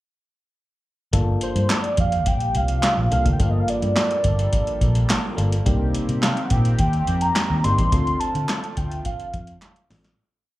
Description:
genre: early-eighties boogie funk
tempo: 106 BPM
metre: 4/4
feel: straight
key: G minor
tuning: A4 = 440 Hz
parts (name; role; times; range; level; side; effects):
- FM electric piano; accompaniment; 1.1-10.1 s; A3 to A4; -29 LUFS; left 2 dB; chorus, slapback echo
- chorused pulse-width pad; sustained chords; 1.1-10.2 s; D3 to A4; -31 LUFS; equal; none
- vintage muted fingered electric bass; bass; 1.1-10.1 s; G1 to D3; -21 LUFS; equal; none
- electro analog drum machine; drums; 1.1-10.2 s; hi-hat, kick drum, snare drum; -24 LUFS; equal; none
- warm velvety synth lead; melody; 1.4-9.9 s; C5 to C6; -25 LUFS; equal; chorus, slapback echo
- group handclap; percussion; 1.7-9.8 s; none; -28 LUFS; right 2 dB; slapback echo
room: little or no reverb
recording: live gig heard through the venue's PA, club ambience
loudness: -18 LUFS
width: side -16 dB against mid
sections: 1.1-10.2 verse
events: fade-out 7.9-10.2; drum fill 9.6-10.2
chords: 1.1 Gm7; 5.7 Cm7; 7.9 Dm7

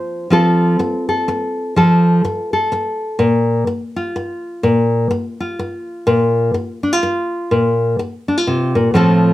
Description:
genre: folk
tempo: 125 BPM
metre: 3/4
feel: swing 59% on 8ths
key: unclear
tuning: A4 = 436 Hz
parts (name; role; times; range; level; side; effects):
- nylon-string guitar; solo; 0.0-9.3 s; A2 to C5; -14 LUFS; equal; none
room: moderate studio reverb, RT60 0.6 s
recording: none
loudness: -14 LUFS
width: side -15 dB against mid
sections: 0.0-3.2 A section; 3.2-9.3 B section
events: none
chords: 0.3 F; 3.2 Bb5

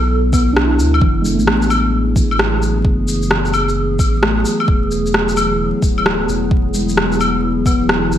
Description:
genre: future garage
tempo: 131 BPM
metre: 4/4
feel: swing 64% on 16ths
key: F# minor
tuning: A4 = 439 Hz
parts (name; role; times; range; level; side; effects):
- muted felt-like synth keys; accompaniment; 0.0-8.2 s; E3 to E4; -20 LUFS; equal; chorus, sidechain pumping, digital delay
- warbly tape-like pad; sustained chords; 0.0-8.2 s; B2 to A4; -20 LUFS; left 1 dB; chorus, built-in reverb, sidechain pumping
- soft dub sub bass; bass; 0.0-8.2 s; D1 to D2; -20 LUFS; equal; tube saturation, sidechain pumping
- electronic kick drum; drums; 0.3-7.8 s; none; -16 LUFS; equal; none
- electronic shaker, claves and rim click; drums; 0.3-8.2 s; none; -18 LUFS; left 1 dB; none
room: moderate lush hall reverb, RT60 1.5 s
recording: bright 1980s-style digital production, vinyl crackle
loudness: -13 LUFS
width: side -10 dB against mid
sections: 0.0-8.2 A section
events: none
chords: 0.0 Bm7; 1.0 F#m7; 4.7 E7

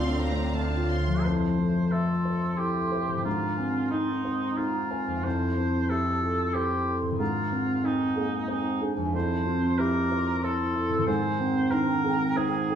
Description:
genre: cinematic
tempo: 92 BPM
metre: 3/4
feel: rubato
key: unclear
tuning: A4 = 441 Hz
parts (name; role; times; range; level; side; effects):
- clear studio violin section; melody; 0.0-1.2 s; A5 to C6; -37 LUFS; right 1 dB; none
- clear symphonic violin section; second line; 0.0-1.0 s; F5; -40 LUFS; right 2 dB; none
- felt-muted upright piano; accompaniment; 0.0-12.8 s; D2 to E5; -29 LUFS; equal; none
- rich symphonic viola section; accompaniment; 0.0-1.0 s; C4; -35 LUFS; equal; none
- concert harp; arpeggios; 0.0-12.8 s; F2 to A5; -31 LUFS; left 2 dB; none
- clear studio double bass section; bass; 0.0-1.0 s; D2; -29 LUFS; right 1 dB; none
- warm studio cello section; bass; 0.0-0.9 s; D4; -36 LUFS; equal; none
- warm oboe; second line; 0.6-12.8 s; Eb4 to C5; -31 LUFS; right 1 dB; none
- mellow hollow concert flute; second line; 1.2-12.8 s; G5 to D6; -36 LUFS; equal; none
- dark clarinet; second line; 1.3-12.8 s; Bb3 to G4; -33 LUFS; equal; none
room: wet stone room reverb, RT60 1.2 s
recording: heard from further back in the room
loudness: -24 LUFS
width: side -8 dB against mid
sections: 0.0-1.3 A section; 1.3-12.8 B section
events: none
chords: 0.0 Dm7; 1.3 Fmaj7; 3.3 Ab; 5.2 Fmaj7; 7.2 Ab; 9.1 Fmaj7; 11.1 Ab

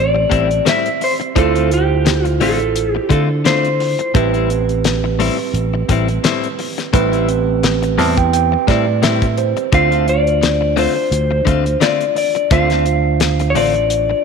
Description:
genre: straight-eighth soul blues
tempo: 86 BPM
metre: 4/4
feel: swing 55% on 16ths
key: A minor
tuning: A4 = 440 Hz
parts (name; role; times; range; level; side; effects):
- electric guitar through a small old amp; melody; 0.0-4.1, 9.7-14.2 s; G4 to F5; -17 LUFS; left 3 dB; spring reverb
- overdriven tine electric piano; accompaniment; 0.0-14.2 s; C4 to A5; -20 LUFS; right 14 dB; none
- fingered electric bass; bass; 0.0-14.1 s; A1 to D3; -18 LUFS; right 1 dB; none
- direct-recorded clean electric guitar; stabs; 0.1-14.1 s; A2 to F4; -21 LUFS; left 9 dB; none
- damped 70s drum kit; drums; 0.3-14.1 s; hi-hat, kick drum, snare drum; -19 LUFS; left 2 dB; none
room: light reverb, small room reverb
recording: 1960s-style stereo with parts hard left and right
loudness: -13 LUFS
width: side -6 dB against mid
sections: 0.0-14.2 A section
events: tine electric piano fill 7.6-9.7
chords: 0.0 Am7; 1.4 Dm7; 4.1 Am7; 9.7 Dm7

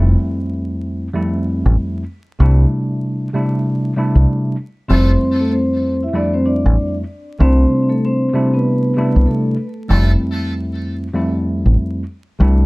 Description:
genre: hip hop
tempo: 96 BPM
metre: 4/4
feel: swing 62% on 16ths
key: unclear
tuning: A4 = 440 Hz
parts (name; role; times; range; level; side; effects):
- mellow tine electric piano; accompaniment; 0.0-12.7 s; F2 to E4; -18 LUFS; equal; medium stereo tremolo, cassette tape, high-pass filter, low-pass filter
- deep dub fingered electric bass; bass; 0.0-12.6 s; F1 to C2; -11 LUFS; equal; none
- vibraphone with soft mallets; melody; 4.9-9.6 s; A3 to E5; -18 LUFS; equal; high-pass filter, low-pass filter, digital delay
- muted trumpet section; stabs; 4.9-5.1, 9.9-10.1 s; A3 to A4; -29 LUFS; equal; high-pass filter, low-pass filter, digital delay
room: light reverb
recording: vinyl crackle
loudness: -14 LUFS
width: side -24 dB against mid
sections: 0.0-12.7 A section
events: none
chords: 0.0 Fmaj7; 2.4 C69; 4.9 Fmaj7; 7.4 C69; 9.9 Fmaj7

